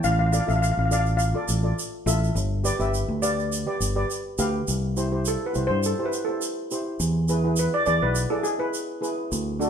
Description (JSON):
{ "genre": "calypso", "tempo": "103 BPM", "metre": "4/4", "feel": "straight", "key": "C major", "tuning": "A4 = 440 Hz", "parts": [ { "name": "steel pan", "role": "melody", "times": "0.0-9.4 s", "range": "G#4 to F5", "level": "-26 LUFS", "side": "equal", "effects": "none" }, { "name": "steel pan", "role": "accompaniment", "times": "0.0-9.7 s", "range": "D4 to F5", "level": "-29 LUFS", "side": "equal", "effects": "none" }, { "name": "fingered electric bass", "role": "bass", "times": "0.0-9.7 s", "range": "G1 to G2", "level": "-24 LUFS", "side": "equal", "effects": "none" }, { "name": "tube shaker", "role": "percussion", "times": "0.0-9.7 s", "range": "none", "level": "-32 LUFS", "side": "right 4 dB", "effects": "none" } ], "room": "wet studio reverb, RT60 0.9 s", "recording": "band playing live in one room", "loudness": "-22 LUFS", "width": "side -8 dB against mid", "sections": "0.0-4.7 A section; 4.7-9.7 B section", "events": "steel pan solo 4.7-9.7", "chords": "0.0 Dm/A; 2.4 G; 4.7 C6; 7.0 E", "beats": "| 0.04 0.62 1.20 1.77 | 2.35 2.93 3.51 4.09 | 4.67 5.25 5.83 6.41 | 7.00 7.58 8.16 8.74 | 9.32" }